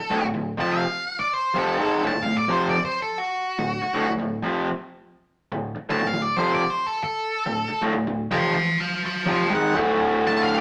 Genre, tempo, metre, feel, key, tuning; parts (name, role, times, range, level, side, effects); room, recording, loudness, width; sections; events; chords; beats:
rock; 124 BPM; 4/4; straight; A4 = 440 Hz
octave-fuzz lead guitar; melody; 0.0-10.6 s; F#4 to C6; -27 LUFS; equal; distortion
raw garage guitar; riff; 0.1-10.6 s; D2 to F#4; -25 LUFS; equal; overdrive
moderate stone room reverb, RT60 1.0 s; rough rehearsal-room recording, tube saturation; -24 LUFS; mono
0.0-9.7 A section
0.0 D5; 9.7 D
| 0.10 0.58 1.07 1.55 | 2.03 2.52 3.00 3.48 | 3.96 4.45 4.93 5.41 | 5.89 6.38 6.86 7.34 | 7.82 8.30 8.78 9.26 | 9.74 10.22